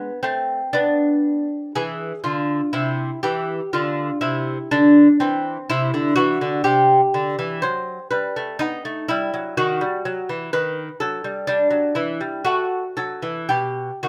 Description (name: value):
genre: classical, baroque-style dance for lute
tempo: 61 BPM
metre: 3/4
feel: rubato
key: E minor from 5.7 s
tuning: A4 = 440 Hz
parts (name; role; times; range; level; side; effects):
- lute; solo; 0.0-14.1 s; B2 to C5; -21 LUFS; equal; none
room: light reverb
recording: none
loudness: -21 LUFS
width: mono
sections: 0.0-14.1 A section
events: none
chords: 0.0 E7/G#; 2.7 Cadd9; 7.6 F#dim; 8.6 B (rootless); 10.5 B7/D#; 11.5 Em; 12.5 Esus24; 13.5 N.C.